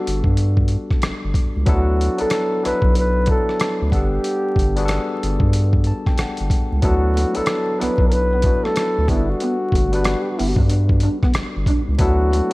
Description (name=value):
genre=R&B, neo-soul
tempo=93 BPM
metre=4/4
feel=swing 61% on 16ths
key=unclear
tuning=A4 = 440 Hz
part: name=breathy flugelhorn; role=melody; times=0.0-12.5 s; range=E4 to B4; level=-22 LUFS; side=equal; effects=none
part: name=barky tine electric piano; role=accompaniment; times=0.0-12.5 s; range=F#3 to A5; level=-24 LUFS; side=left 2 dB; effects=medium stereo tremolo
part: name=round analog bass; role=bass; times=0.1-12.4 s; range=G1 to G2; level=-19 LUFS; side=equal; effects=none
part: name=boom bap sampler-style drum kit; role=drums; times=0.1-12.5 s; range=hi-hat, kick drum, rim click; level=-20 LUFS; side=equal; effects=none
part: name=electric guitar through a small old amp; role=second line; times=7.2-12.4 s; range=A3 to D4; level=-28 LUFS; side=right 2 dB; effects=analog chorus
room=digital ambience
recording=dark, warm production, vinyl crackle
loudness=-16 LUFS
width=side -21 dB against mid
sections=0.0-12.5 A section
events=tine electric piano fill 5.5-6.8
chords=0.0 Gmaj7; 1.7 D6; 3.9 Gmaj7; 6.8 D6; 9.1 Gmaj7; 12.0 D6